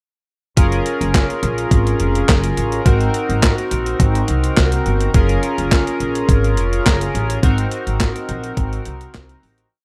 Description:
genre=early-eighties boogie funk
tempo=105 BPM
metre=4/4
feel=straight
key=Gb lydian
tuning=A4 = 440 Hz
part: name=chorused polysynth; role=accompaniment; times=0.6-9.7 s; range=C4 to Bb4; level=-23 LUFS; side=equal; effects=none
part: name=upright bass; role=bass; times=0.6-9.6 s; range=F1 to C2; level=-22 LUFS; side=equal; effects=none
part: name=clean 12-bit digital drum machine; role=drums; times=0.6-9.7 s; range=handclaps, hi-hat, kick drum, snare drum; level=-18 LUFS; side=equal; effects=none
room=digital ambience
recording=none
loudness=-17 LUFS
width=mono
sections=0.6-9.7 verse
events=fade-out 7.4-9.7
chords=0.6 Gbmaj9; 2.9 Ab7; 5.1 Gbmaj9; 7.4 Ab7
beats=| 0.57 1.14 1.72 2.29 | 2.86 3.43 4.00 4.57 | 5.14 5.72 6.29 6.86 | 7.43 8.00 8.57 9.14

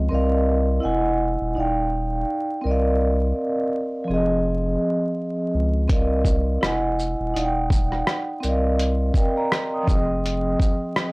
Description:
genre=lo-fi hip hop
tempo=83 BPM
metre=4/4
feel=swing 56% on 16ths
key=unclear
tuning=A4 = 441 Hz
part: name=vibraphone with soft mallets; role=accompaniment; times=0.0-11.1 s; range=F3 to Eb6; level=-22 LUFS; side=right 1 dB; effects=cassette tape
part: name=saturated sub bass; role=bass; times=0.0-10.6 s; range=D#1 to Db2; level=-23 LUFS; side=equal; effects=transformer saturation
part: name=lo-fi sampler-style drum kit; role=drums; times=5.9-11.1 s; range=hi-hat, kick drum, rim click, shaker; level=-22 LUFS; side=equal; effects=none
room=little or no reverb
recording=dry, gritty hardware recording, vinyl crackle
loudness=-20 LUFS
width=side -27 dB against mid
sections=0.0-11.1 A section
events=none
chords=0.1 Cm11; 0.8 Emaj9; 1.6 Ebmaj9; 2.6 Cm11; 4.1 Fm7; 5.9 Cm11; 6.6 Emaj9; 7.3 Ebmaj9; 8.4 Cm11; 9.9 Fm7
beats=| 0.11 0.83 1.56 2.28 | 3.00 3.72 4.45 5.17 | 5.89 6.62 7.34 8.06 | 8.79 9.51 10.23 10.95

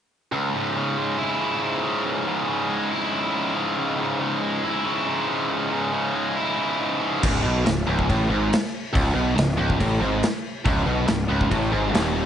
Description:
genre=heavy metal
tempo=139 BPM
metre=4/4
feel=straight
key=C# minor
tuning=A4 = 440 Hz
part: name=heavy high-gain guitar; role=riff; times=0.3-12.3 s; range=C#2 to E4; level=-22 LUFS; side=equal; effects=distortion
part: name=fuzz picked electric bass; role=bass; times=7.2-12.3 s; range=C#1 to B1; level=-24 LUFS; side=equal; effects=overdrive
part: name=big rock drum kit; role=drums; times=7.2-12.0 s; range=crash cymbal, kick drum, snare drum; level=-25 LUFS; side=equal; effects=none
room=little or no reverb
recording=nothing above 10.4 kHz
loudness=-21 LUFS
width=side -9 dB against mid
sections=0.3-7.2 A section; 7.2-12.3 B section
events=none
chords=0.3 C#m; 7.2 C#5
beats=| 0.32 0.76 1.19 1.62 | 2.06 2.49 2.92 3.35 | 3.79 4.22 4.65 5.08 | 5.51 5.94 6.37 6.80 | 7.23 7.66 8.09 8.52 | 8.95 9.38 9.80 10.23 | 10.66 11.09 11.52 11.94

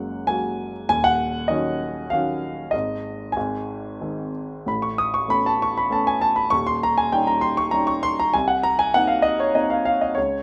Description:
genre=classical, lyrical solo piano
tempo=98 BPM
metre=3/4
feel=rubato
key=unclear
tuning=A4 = 440 Hz
part: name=dark grand piano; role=solo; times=0.0-10.4 s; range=Eb1 to Eb6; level=-22 LUFS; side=equal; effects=none
room=light reverb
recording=none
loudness=-22 LUFS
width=mono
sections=0.0-10.4 A section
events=none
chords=0.0 Gbadd9; 0.9 Ebm7; 2.7 N.C.; 3.4 Ab; 4.7 Aadd9; 6.5 Eb7; 8.3 Cm7b5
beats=0.29 | 0.89 1.50 2.12 | 2.73 3.36 4.01 | 4.67 5.30 5.92 | 6.52 7.13 7.74 | 8.34 8.95 9.55 | 10.17

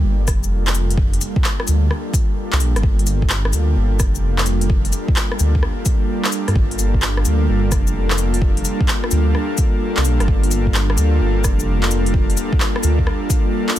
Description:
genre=future garage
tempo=129 BPM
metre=4/4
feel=swing 67% on 16ths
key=G minor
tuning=A4 = 444 Hz
part: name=airy breathy pad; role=sustained chords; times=0.0-13.8 s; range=G3 to A4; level=-23 LUFS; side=equal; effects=chorus, sidechain pumping
part: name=dark detuned saw bass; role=bass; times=0.0-13.1 s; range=F1 to G2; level=-18 LUFS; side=equal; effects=sidechain pumping
part: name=deep house drum kit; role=drums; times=0.3-13.8 s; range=cabasa, handclaps, hi-hat, rim click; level=-24 LUFS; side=left 1 dB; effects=none
part: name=electronic kick drum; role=drums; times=0.3-13.4 s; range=none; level=-18 LUFS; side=equal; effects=none
room=little or no reverb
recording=dense, heavily limited modern master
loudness=-15 LUFS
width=side -13 dB against mid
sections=0.0-13.8 A section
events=none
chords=0.0 Gm9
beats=0.05 0.51 | 0.98 1.44 1.91 2.37 | 2.84 3.30 3.77 4.23 | 4.70 5.16 5.63 6.09 | 6.56 7.02 7.49 7.95 | 8.42 8.88 9.35 9.81 | 10.28 10.74 11.21 11.68 | 12.14 12.61 13.07 13.54

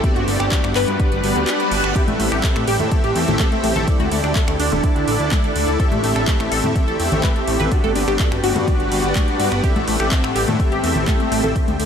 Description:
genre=progressive house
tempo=125 BPM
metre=4/4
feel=straight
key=A dorian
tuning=A4 = 440 Hz
part: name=shimmering ambient pad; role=sustained chords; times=0.0-11.9 s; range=D3 to F#5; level=-24 LUFS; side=right 1 dB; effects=chorus, built-in reverb, sidechain pumping
part: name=tight sequenced synth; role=arpeggios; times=0.0-11.5 s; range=G3 to B4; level=-24 LUFS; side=left 1 dB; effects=chorus, phaser, sidechain pumping, digital delay
part: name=soft supersaw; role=stabs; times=0.0-11.5 s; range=B3 to E5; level=-23 LUFS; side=left 1 dB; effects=ensemble chorus, vintage 12-bit sampler grit, sidechain pumping, digital delay
part: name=deep house drum kit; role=drums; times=0.0-11.9 s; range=finger snaps, handclaps, hi-hat, ride cymbal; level=-27 LUFS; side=right 1 dB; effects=overdrive, small room ambience
part: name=electronic kick drum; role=drums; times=0.0-11.7 s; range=none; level=-19 LUFS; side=equal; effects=overdrive, small room ambience
part: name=fat analog bass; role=bass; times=0.2-11.9 s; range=D1 to A2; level=-23 LUFS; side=equal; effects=sidechain pumping
part: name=reverse cymbal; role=sound effects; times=1.4-2.0 s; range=none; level=-32 LUFS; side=right 7 dB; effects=none
part: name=congas and bongos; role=percussion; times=2.1-11.8 s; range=none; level=-27 LUFS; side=left 2 dB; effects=sidechain pumping on perc
room=light reverb, digital ambience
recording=none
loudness=-16 LUFS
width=side -7 dB against mid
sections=0.0-11.9 A section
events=reverse cymbal 1.4-2.0; kick drops out 1.5-2.0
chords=0.0 Gmaj7; 2.0 Am7; 3.9 Dsus2; 5.8 Am7; 7.7 Gmaj7; 9.6 Am7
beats=| 0.04 0.52 1.00 1.48 | 1.96 2.44 2.92 3.40 | 3.88 4.36 4.84 5.32 | 5.80 6.28 6.76 7.24 | 7.72 8.20 8.68 9.16 | 9.64 10.12 10.60 11.08 | 11.56

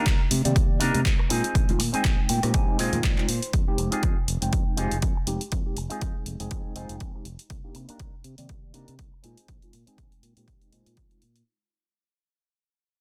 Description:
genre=filtered disco house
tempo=121 BPM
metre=4/4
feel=swing 56% on 16ths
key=unclear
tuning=A4 = 441 Hz
part: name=tine electric piano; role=accompaniment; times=0.0-11.2 s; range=Eb3 to G5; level=-34 LUFS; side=equal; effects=phaser, sidechain pumping, low-pass filter
part: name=electric guitar with an envelope filter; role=riff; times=0.0-11.3 s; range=C4 to Ab5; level=-34 LUFS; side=equal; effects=sidechain pumping, low-pass filter
part: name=overdriven fingered electric bass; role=bass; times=0.1-11.4 s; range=F1 to C3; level=-32 LUFS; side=equal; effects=tube saturation, sidechain pumping, low-pass filter
part: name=electronic kick drum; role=drums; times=0.1-11.1 s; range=none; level=-27 LUFS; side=equal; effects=overdrive
part: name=punchy analog drum machine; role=drums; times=0.1-11.4 s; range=handclaps, hi-hat, rim click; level=-33 LUFS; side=equal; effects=overdrive, sidechain pumping on hats
part: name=egg shaker and congas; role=percussion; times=0.1-3.5 s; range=none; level=-36 LUFS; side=equal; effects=none
room=little or no reverb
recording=dense, heavily limited modern master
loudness=-25 LUFS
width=mono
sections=0.0-11.5 A section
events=fade-out 0.0-11.5; filter sweep 0.0-11.5; clean electric guitar fill 2.0-3.5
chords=0.0 Cm9; 1.3 Bb9sus4; 3.5 Fm7; 7.5 Cm9; 9.2 Bb9sus4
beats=0.06 0.56 1.05 | 1.55 2.05 2.54 3.04 | 3.53 4.03 4.53 5.02 | 5.52 6.01 6.51 7.00 | 7.50 8.00 8.49 8.99 | 9.48 9.98 10.48 10.97

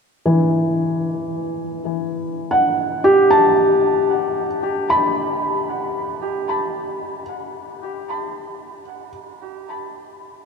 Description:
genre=ambient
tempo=free time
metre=none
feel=none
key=E minor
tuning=A4 = 440 Hz
part: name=felt-muted upright piano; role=solo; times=0.3-10.5 s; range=E3 to B5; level=-18 LUFS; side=equal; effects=ping-pong delay
room=wet cathedral reverb, RT60 6.8 s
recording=in a vast, echoing space, cassette tape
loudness=-17 LUFS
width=side -5 dB against mid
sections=0.0-10.5 A section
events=none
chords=0.0 Emadd9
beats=free time

